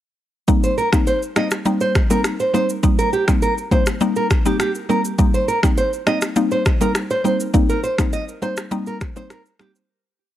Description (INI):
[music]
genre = afrobeats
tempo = 102 BPM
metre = 4/4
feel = straight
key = Eb major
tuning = A4 = 439 Hz
[part]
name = mallet-like synth pluck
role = accompaniment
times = 0.5-9.8 s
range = G3 to Eb4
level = -21 LUFS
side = left 1 dB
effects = chorus, phaser
[part]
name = afro-pop drum kit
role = drums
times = 0.5-9.9 s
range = finger snaps, kick drum, rim click, shaker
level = -19 LUFS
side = equal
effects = none
[part]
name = nylon-string guitar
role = riff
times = 0.6-9.7 s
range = G4 to Eb5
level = -21 LUFS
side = right 2 dB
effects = tape echo
[sound]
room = little or no reverb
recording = dry, gritty hardware recording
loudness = -16 LUFS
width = side -12 dB against mid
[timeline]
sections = 0.5-9.9 verse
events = fade-out 7.5-9.9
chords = 0.5 Eb6